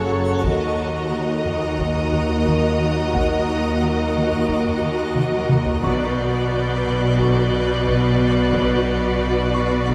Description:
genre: cinematic, suspense film score.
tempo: 89 BPM.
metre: 4/4.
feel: straight.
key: unclear.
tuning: A4 = 440 Hz.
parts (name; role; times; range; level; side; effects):
clear symphonic violin section; melody; 0.0-9.9 s; C#5 to D#5; -30 LUFS; equal; none.
warm symphonic violin section; second line; 0.0-9.9 s; A4 to B4; -33 LUFS; equal; none.
rich symphonic viola section; accompaniment; 0.0-9.9 s; F#4; -29 LUFS; equal; none.
bright trombone section; sustained chords; 0.0-9.9 s; C#3 to F#3; -35 LUFS; equal; none.
mellow French horn section; sustained chords; 0.0-9.9 s; A#3 to A#4; -32 LUFS; equal; none.
twinkling granular texture; sustained chords; 0.0-9.9 s; F#4 to F#5; -33 LUFS; equal; built-in reverb.
concert harp; riff; 0.0-9.9 s; F#2 to D#4; -29 LUFS; equal; none.
clear symphonic double bass section; bass; 0.0-9.9 s; F#1 to D#2; -26 LUFS; equal; none.
rich symphonic cello section; bass; 0.0-9.9 s; D#2 to B2; -27 LUFS; equal; none.
clear symphonic violin section; texture; 0.0-9.9 s; A#5 to G6; -37 LUFS; equal; none.
taiko ensemble; drums; 0.4-9.9 s; none; -29 LUFS; equal; none.
music box; texture; 3.1-9.9 s; B4 to C#6; -35 LUFS; equal; none.
room: wet scoring stage reverb, RT60 2.0 s.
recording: none.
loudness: -20 LUFS.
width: mono.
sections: 0.0-9.9 A section.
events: drum fill 5.2-5.8.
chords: 0.4 D#m; 5.8 Bm.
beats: | 0.43 1.11 1.78 2.46 | 3.13 3.80 4.48 5.15 | 5.83 6.50 7.17 7.85 | 8.52 9.20 9.87.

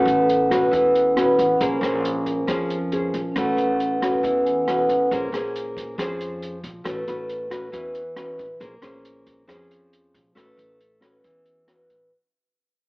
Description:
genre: bossa nova.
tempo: 137 BPM.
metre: 4/4.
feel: straight.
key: unclear.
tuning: A4 = 438 Hz.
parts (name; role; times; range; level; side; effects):
nylon-string guitar; accompaniment; 0.0-12.1 s; E3 to C5; -22 LUFS; equal; none.
vibraphone with soft mallets; accompaniment; 0.0-5.1 s; C#4 to B5; -22 LUFS; right 1 dB; none.
upright bass; bass; 0.0-12.1 s; A1 to F2; -36 LUFS; equal; none.
open jazz drum kit; drums; 0.1-12.0 s; hi-hat, kick drum, rim click; -33 LUFS; equal; none.
room: moderate echo chamber reverb, RT60 1.4 s.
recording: AM radio sound.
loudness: -20 LUFS.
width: side -25 dB against mid.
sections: 0.0-12.1 A section.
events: fade-out 0.0-12.1; vibraphone fill 0.9-1.6, 4.2-5.1.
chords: 0.0 A69; 1.6 Bbm9; 3.4 A69; 5.1 Bbm9; 6.9 A69; 8.6 Bbm9; 10.4 A69.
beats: 0.29 0.72 1.16 | 1.60 2.04 2.48 2.92 | 3.35 3.79 4.23 4.67 | 5.11 5.54 5.98 6.42 | 6.86 7.30 7.74 8.17 | 8.61 9.05 9.49 9.93 | 10.36 10.80 11.24 11.68.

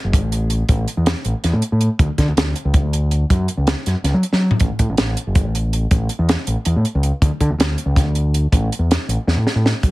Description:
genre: math rock and midwest emo.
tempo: 321 BPM (eighths).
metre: 7/8.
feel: straight.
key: A major.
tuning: A4 = 442 Hz.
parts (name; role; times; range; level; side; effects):
growling fingered electric bass; bass; 0.0-9.9 s; F#1 to F#3; -18 LUFS; equal; overdrive.
compact cocktail drum kit; drums; 0.1-9.9 s; hi-hat, kick drum, snare drum, toms; -18 LUFS; equal; none.
room: little or no reverb.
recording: heavily compressed radio sound, multiband compression.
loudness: -16 LUFS.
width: side -19 dB against mid.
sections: 0.0-9.8 A section.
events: drum fill 4.3, 9.3-9.8.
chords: none.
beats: 0.12 0.31 0.50 | 0.68 0.87 1.05 1.24 1.43 1.61 1.80 | 1.99 2.17 2.36 2.54 2.73 2.92 3.10 | 3.29 3.48 3.66 3.85 4.04 4.22 4.41 | 4.60 4.78 4.97 5.16 5.34 5.53 5.72 | 5.91 6.09 6.28 6.47 6.65 6.84 7.03 | 7.21 7.40 7.59 7.77 7.96 8.15 8.33 | 8.52 8.71 8.89 9.08 9.27 9.46 9.64 | 9.83.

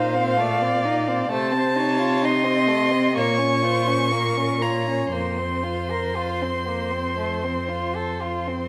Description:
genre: classical, slow romantic movement for string quartet.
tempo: 57-66 BPM.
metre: 4/4.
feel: rubato.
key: unclear.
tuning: A4 = 439 Hz.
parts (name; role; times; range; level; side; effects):
warm violin; melody; 0.0-8.7 s; F5 to Db6; -28 LUFS; equal; none.
rich violin; second line; 0.0-8.7 s; A3 to Bb4; -29 LUFS; equal; none.
rich viola; accompaniment; 0.0-8.7 s; Bb4 to Eb5; -30 LUFS; equal; none.
clear cello; bass; 0.0-8.7 s; F2 to C3; -28 LUFS; equal; none.
room: moderate recital hall reverb, RT60 1.4 s.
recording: none.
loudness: -23 LUFS.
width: mono.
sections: 0.0-8.7 A section.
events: none.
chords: 0.0 F7(no3)/Bb; 1.3 F7/C (rootless); 3.2 Bbm; 5.1 Fsus4.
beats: 0.40 | 1.32 2.24 3.17 4.13 | 5.13 6.17 7.20 8.22.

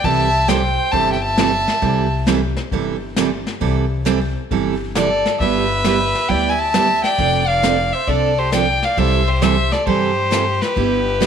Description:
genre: country, western swing.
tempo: 134 BPM.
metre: 4/4.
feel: swing 67% on 8ths.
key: C major.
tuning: A4 = 440 Hz.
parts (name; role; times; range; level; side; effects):
clear fiddle; melody; 0.0-2.1, 5.0-11.3 s; B4 to A5; -18 LUFS; left 2 dB; slapback echo.
clear fiddle; second line; 0.0-2.1, 5.0-11.3 s; G4 to E5; -24 LUFS; right 6 dB; slapback echo.
picked steel-string acoustic guitar; accompaniment; 0.0-11.3 s; C3 to A4; -20 LUFS; right 8 dB; none.
upright bass; bass; 0.0-11.3 s; F1 to G2; -22 LUFS; left 2 dB; none.
jazz brush drum kit; drums; 0.0-11.3 s; brushed snare drum, hi-hat, kick drum, snare drum; -23 LUFS; left 3 dB; none.
room: moderate echo chamber reverb, RT60 1.4 s.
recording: 1960s-style stereo.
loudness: -15 LUFS.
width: side -7 dB against mid.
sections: 0.0-11.3 A section.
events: none.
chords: 0.0 C6; 5.4 G6; 7.2 F6; 9.0 C6.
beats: | 0.05 0.49 0.94 1.39 | 1.83 2.28 2.72 3.17 | 3.62 4.06 4.51 4.96 | 5.41 5.85 6.30 6.75 | 7.19 7.64 8.09 8.54 | 8.98 9.43 9.88 10.32 | 10.77 11.22.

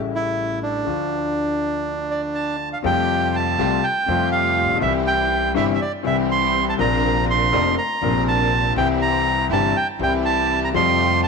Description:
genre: tango.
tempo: 121 BPM.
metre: 4/4.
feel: rubato.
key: F major.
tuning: A4 = 441 Hz.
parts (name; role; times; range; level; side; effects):
clear baby grand piano; accompaniment; 0.0-11.3 s; F1 to F4; -22 LUFS; left 11 dB; none.
upright bass; bass; 0.0-11.3 s; F1 to F2; -28 LUFS; right 3 dB; none.
bandoneon; melody; 0.2-11.3 s; D4 to C6; -21 LUFS; right 3 dB; none.
rich symphonic string section; stabs; 2.8-11.3 s; A3 to Bb4; -27 LUFS; right 12 dB; none.
room: moderate plate reverb, RT60 3.0 s.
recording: 1960s-style stereo with parts hard left and right.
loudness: -18 LUFS.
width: side -4 dB against mid.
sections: 0.0-2.8 A section; 2.8-11.3 B section.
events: none.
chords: 0.0 A7; 0.8 Dm; 2.8 Fadd9; 4.8 C; 6.8 Bbadd9; 8.8 C; 10.7 Fadd9.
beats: 0.35 | 0.85 1.34 1.84 2.34 | 2.83 3.33 3.83 4.32 | 4.82 5.31 5.80 6.29 | 6.79 7.28 7.77 8.27 | 8.76 9.25 9.75 10.24 | 10.74 11.24.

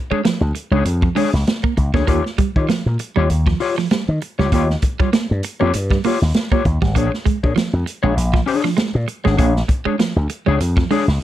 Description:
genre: funk.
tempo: 99 BPM.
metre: 4/4.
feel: swing 56% on 16ths.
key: unclear.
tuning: A4 = 440 Hz.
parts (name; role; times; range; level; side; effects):
mellow electric guitar; accompaniment; 0.1-11.1 s; D4 to C#5; -21 LUFS; left 6 dB; harmonic tremolo.
clean electric guitar; riff; 0.1-11.0 s; F3 to Bb3; -22 LUFS; right 9 dB; harmonic tremolo.
slap bass with an envelope filter; bass; 0.1-11.2 s; Ab1 to Eb3; -18 LUFS; equal; none.
vintage drum kit; drums; 0.2-11.1 s; hi-hat, kick drum, snare drum; -20 LUFS; equal; none.
room: light reverb.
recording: dark, warm production.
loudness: -16 LUFS.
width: side -13 dB against mid.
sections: 0.0-11.2 A section.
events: none.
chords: 0.0 Bb7#9 (rootless); 2.1 Eb9; 7.0 Bb7#9.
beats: 0.25 0.86 1.47 | 2.08 2.69 3.30 3.91 | 4.52 5.13 5.74 6.35 | 6.96 7.57 8.17 8.78 | 9.39 10.00 10.61.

